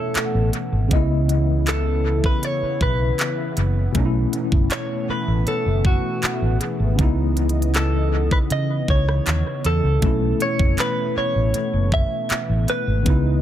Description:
contemporary R&B; 79 BPM; 4/4; straight; A4 = 440 Hz
direct-recorded clean electric guitar; melody; 0.0-13.4 s; F#4 to E5; -25 LUFS; equal; wide subtle chorus, analog delay
tine electric piano; accompaniment; 0.0-13.4 s; B2 to D#5; -26 LUFS; left 2 dB; overdrive, fast stereo tremolo, analog delay
warm analog pad; sustained chords; 0.0-13.4 s; C#3 to D#5; -29 LUFS; right 1 dB; chorus
celesta; texture; 0.0-7.5 s; G#4 to F#5; -37 LUFS; left 1 dB; analog delay
trap drum kit; drums; 0.1-13.2 s; handclaps, hi-hat, kick drum, rim click; -22 LUFS; equal; analog delay
fingered electric bass; bass; 0.2-13.4 s; F#1 to C#3; -20 LUFS; equal
digital ambience; echo-heavy mix; -18 LUFS; side -11 dB against mid
0.0-13.4 A section
0.0 B9sus4; 0.9 C#m9; 3.9 B9sus4; 7.0 C#m9; 10.0 B9sus4

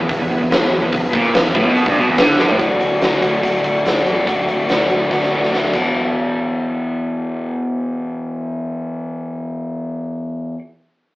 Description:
classic rock; 144 BPM; 4/4; straight; E mixolydian; A4 = 440 Hz
bright tonewheel organ; sustained chords; 0.0-2.6 s; B3 to B4; -25 LUFS; equal
overdriven electric guitar; riff; 0.0-2.6 s; E2 to D3; -19 LUFS; right 1 dB; spring reverb
overdriven electric guitar; riff; 0.0-2.6 s; E2 to D3; -24 LUFS; equal
overdriven semi-hollow guitar; riff; 0.0-10.6 s; E2 to F#4; -19 LUFS; left 1 dB
hollow-body short-scale picked electric bass; bass; 0.0-10.5 s; E1 to D3; -33 LUFS; equal
huge arena drum kit; drums; 0.1-5.8 s; crash cymbal, hi-hat, kick drum, snare drum, toms; -18 LUFS; equal
moderate studio reverb, RT60 0.6 s; rough rehearsal-room recording, warm saturation, AM radio sound; -15 LUFS; side -19 dB against mid
0.0-2.6 A section; 2.6-5.9 B section; 5.9-9.3 C section
drum fill 2.4, 5.1-5.9
0.0 E; 2.6 D; 5.7 E5

